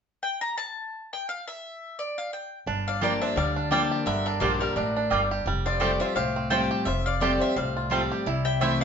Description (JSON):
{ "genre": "bluegrass", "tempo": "172 BPM", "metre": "4/4", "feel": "swing 56% on 8ths", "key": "G dorian", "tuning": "A4 = 441 Hz", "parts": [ { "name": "mandolin", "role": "melody", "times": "0.2-8.8 s", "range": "Bb4 to Bb5", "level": "-30 LUFS", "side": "left 1 dB", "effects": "none" }, { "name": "bluegrass banjo", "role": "melody", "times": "2.7-8.8 s", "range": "D3 to G4", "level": "-31 LUFS", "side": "right 4 dB", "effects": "none" }, { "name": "picked steel-string acoustic guitar", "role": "accompaniment", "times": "2.7-8.8 s", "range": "F2 to G4", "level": "-29 LUFS", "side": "left 2 dB", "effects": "none" }, { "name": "upright bass", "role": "bass", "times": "2.7-8.8 s", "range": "F1 to D2", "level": "-32 LUFS", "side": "equal", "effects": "none" }, { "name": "lap resonator guitar", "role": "second line", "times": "2.9-8.8 s", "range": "G4 to E5", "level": "-32 LUFS", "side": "left 6 dB", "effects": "none" }, { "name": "mandolin", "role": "stabs", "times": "3.0-8.7 s", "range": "A3 to G5", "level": "-28 LUFS", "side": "right 4 dB", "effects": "none" } ], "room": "wet studio reverb, RT60 0.7 s", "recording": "band playing live in one room, nothing above 7.7 kHz", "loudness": "-24 LUFS", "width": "side -7 dB against mid", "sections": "0.0-2.7 A section; 2.7-8.8 B section", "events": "none", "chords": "0.0 N.C.; 2.7 Gm7; 5.5 Fadd9; 8.3 C6", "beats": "0.23 0.58 0.93 | 1.27 1.62 1.97 2.32 | 2.67 3.02 3.37 3.71 | 4.06 4.41 4.76 5.11 | 5.46 5.81 6.16 6.51 | 6.86 7.21 7.56 7.91 | 8.26 8.61" }